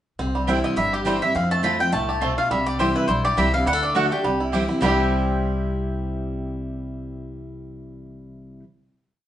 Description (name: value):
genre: bluegrass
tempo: 208 BPM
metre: 4/4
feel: swing 55% on 8ths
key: C major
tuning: A4 = 440 Hz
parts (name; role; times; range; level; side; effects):
- picked steel-string acoustic guitar; accompaniment; 0.2-8.6 s; F2 to F#4; -26 LUFS; left 1 dB; none
- bluegrass banjo; arpeggios; 0.2-8.6 s; G3 to G4; -26 LUFS; right 2 dB; none
- upright bass; bass; 0.2-8.6 s; G1 to F2; -29 LUFS; equal; none
- mandolin; stabs; 0.5-8.6 s; A3 to A5; -29 LUFS; right 4 dB; none
- mandolin; melody; 0.6-8.6 s; G4 to B5; -24 LUFS; left 1 dB; none
room: wet studio reverb, RT60 0.8 s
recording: band playing live in one room, nothing above 10.8 kHz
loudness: -20 LUFS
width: side -11 dB against mid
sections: 0.2-4.8 A section; 4.8-7.1 final chord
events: none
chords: 0.2 C; 1.4 F; 2.5 C; 3.7 D; 4.2 C